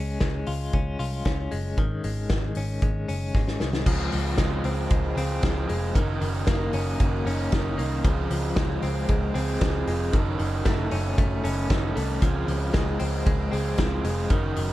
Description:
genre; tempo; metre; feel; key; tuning
jangly indie pop; 115 BPM; 4/4; straight; Db major; A4 = 440 Hz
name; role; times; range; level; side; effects
direct-recorded clean electric guitar; arpeggios; 0.0-14.7 s; Eb3 to F4; -30 LUFS; left 3 dB; tremolo
vintage muted picked electric bass; bass; 0.0-14.7 s; F1 to Db2; -28 LUFS; equal; none
loose indie drum kit; drums; 0.2-14.7 s; crash cymbal, hi-hat, kick drum, ride cymbal, snare drum; -26 LUFS; equal; none
raw garage guitar; accompaniment; 3.9-14.7 s; Db3 to Bb4; -30 LUFS; right 4 dB; overdrive
room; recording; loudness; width
light reverb; dark, warm production; -23 LUFS; side -15 dB against mid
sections
0.0-3.9 A section; 3.9-14.7 B section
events
drum fill 3.3-3.9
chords
0.0 Db; 1.8 Absus4; 3.9 Dbmaj7; 6.0 Gb6; 8.0 Dbmaj7; 10.1 Gbm6; 12.2 Dbmaj7

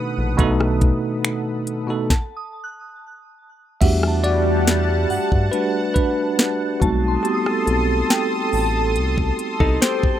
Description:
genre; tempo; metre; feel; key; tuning
contemporary R&B; 70 BPM; 4/4; straight; E minor; A4 = 440 Hz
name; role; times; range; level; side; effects
bell-like tine electric piano; accompaniment; 0.0-10.2 s; B2 to E5; -22 LUFS; right 1 dB; medium stereo tremolo
lush unison pad; sustained chords; 0.0-10.2 s; G3 to D#6; -25 LUFS; equal; chorus, phaser, sidechain pumping
soft synth bell; texture; 0.0-10.2 s; F#5 to F#6; -33 LUFS; right 2 dB; chorus, digital delay
round analog bass; bass; 0.2-9.8 s; A1 to G2; -21 LUFS; equal; none
trap drum kit; drums; 0.4-10.2 s; crash cymbal, finger snaps, hi-hat, kick drum, rim click, snare drum; -19 LUFS; equal; none
direct-recorded clean electric guitar; arpeggios; 9.6-10.2 s; D#4 to C5; -22 LUFS; left 4 dB; none
room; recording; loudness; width
little or no reverb; rough home demo mix; -17 LUFS; side -11 dB against mid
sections
0.0-3.8 A section; 3.8-10.2 B section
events
stop 2.1-3.8; tine electric piano solo 3.8-10.2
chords
0.0 B7; 3.8 Em11; 6.8 B7b9b13

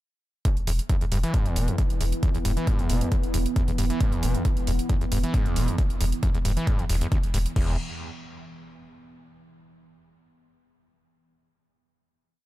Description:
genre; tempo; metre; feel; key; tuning
driving peak-time techno; 135 BPM; 4/4; straight; E minor; A4 = 441 Hz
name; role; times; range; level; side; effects
screaming distorted acid line; riff; 0.5-7.8 s; D2 to E3; -30 LUFS; equal; distortion, chorus, sidechain pumping, digital delay
deep dark ambient pad; drone; 1.3-7.6 s; E3 to B3; -33 LUFS; right 1 dB; chorus, built-in reverb, sidechain pumping
electronic kick drum; drums; 0.5-7.7 s; none; -24 LUFS; equal; overdrive
techno drum kit; drums; 0.5-7.7 s; crash cymbal, hi-hat; -36 LUFS; right 2 dB; sidechain pumping on hats, sidechain pumping on cymbals
saturated sub bass; bass; 0.6-7.8 s; E1; -27 LUFS; equal; overdrive, sidechain pumping, low-pass filter
room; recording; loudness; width
little or no reverb; none; -22 LUFS; side -16 dB against mid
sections
0.5-7.6 groove; 7.6-9.3 final note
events
none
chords
0.5 Em; 7.6 N.C.

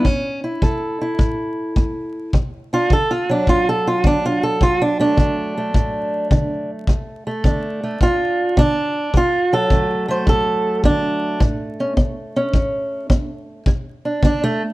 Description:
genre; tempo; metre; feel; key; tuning
acoustic country blues, solo or duo; 106 BPM; 4/4; swing 67% on 8ths; D major; A4 = 440 Hz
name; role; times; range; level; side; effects
fingerpicked steel-string acoustic guitar; melody; 0.0-14.7 s; D2 to C5; -18 LUFS; right 1 dB; plate reverb
kick drum; drums; 0.0-14.4 s; none; -18 LUFS; equal; none
room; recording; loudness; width
light reverb; dark, warm production, vinyl crackle; -16 LUFS; side -18 dB against mid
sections
0.0-2.3 A section; 2.3-14.7 B section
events
steel-string acoustic guitar solo 2.3-14.7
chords
0.0 A5; 2.3 D; 11.4 A; 13.7 G5

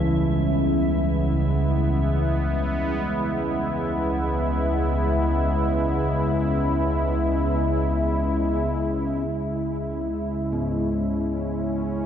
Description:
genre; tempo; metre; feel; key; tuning
dark ambient drone; free time; none; none; unclear; A4 = 440 Hz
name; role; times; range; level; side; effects
sweeping resonant pad; sustained chords; 0.0-12.1 s; C#3 to E4; -24 LUFS; equal; chorus
carillon bells; arpeggios; 0.0-12.1 s; E3 to G#3; -30 LUFS; equal; ping-pong delay
analog drone; drone; 0.0-12.1 s; C#2 to C#3; -25 LUFS; equal; chorus, phaser
icy glass pad; texture; 0.0-9.3 s; E5; -39 LUFS; right 4 dB; chorus, built-in reverb
room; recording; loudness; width
wet huge ambient reverb, RT60 8.6 s; dark, warm production, nothing above 10.6 kHz; -21 LUFS; side -9 dB against mid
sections
0.0-9.3 A section; 9.3-12.1 B section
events
fade-out on ambient pad 0.0-9.3; filter sweep on synth drone 9.3-12.1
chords
0.0 E/C#; 9.3 C#m

